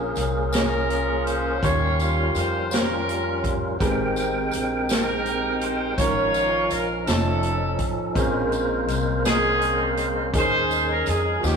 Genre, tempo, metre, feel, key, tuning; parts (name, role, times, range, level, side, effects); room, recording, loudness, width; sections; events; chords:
slow gospel; 55 BPM (dotted quarters); 6/8; straight; A4 = 440 Hz
warm upright piano; accompaniment; 0.0-11.6 s; Ab2 to C6; -29 LUFS; equal
tonewheel organ; sustained chords; 0.0-11.6 s; F3 to G5; -26 LUFS; equal; fast rotary speaker, overdrive
upright bass; bass; 0.0-11.6 s; F1 to F2; -28 LUFS; left 1 dB
swinging big-band drum kit; drums; 0.2-11.6 s; hi-hat, kick drum, snare drum; -28 LUFS; equal
tambourine; percussion; 0.2-11.6 s; -39 LUFS; left 4 dB
warm horn section; melody; 0.5-11.6 s; Bb3 to Db5; -24 LUFS; right 1 dB
wet stone room reverb, RT60 1.4 s; rough rehearsal-room recording; -20 LUFS; side -6 dB against mid
0.0-11.6 A section
0.0 Bbm9; 1.6 Eb13; 3.8 Abmaj9; 6.0 Db69/Ab; 7.1 Faug7; 8.2 Bbm9; 10.3 Eb7sus4